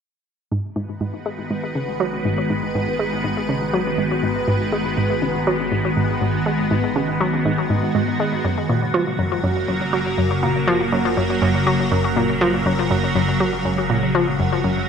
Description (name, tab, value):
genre	ambient, sequencer-driven space music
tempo	121 BPM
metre	4/4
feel	straight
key	G# minor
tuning	A4 = 440 Hz
part	evolving wavetable pad	sustained chords	1.1-14.9 s	C#3 to B4	-20 LUFS	equal	ensemble chorus, built-in reverb, phaser
part	analog pluck	riff	0.5-14.8 s	F#2 to G#3	-21 LUFS	equal	chorus, ping-pong delay
part	analog drone	bass	1.8-14.9 s	F#1 to G#1	-37 LUFS	equal	chorus
room	wet plate reverb, RT60 2.4 s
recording	none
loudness	-18 LUFS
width	side -7 dB against mid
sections	0.5-14.9 A section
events	fade-in on synth drone 0.5-14.9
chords	0.5 G#m7; 8.4 F#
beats	| 0.51 1.01 1.50 2.00 | 2.50 2.99 3.49 3.98 | 4.48 4.98 5.47 5.97 | 6.46 6.96 7.46 7.95 | 8.45 8.94 9.44 9.94 | 10.43 10.93 11.42 11.92 | 12.41 12.91 13.41 13.90 | 14.40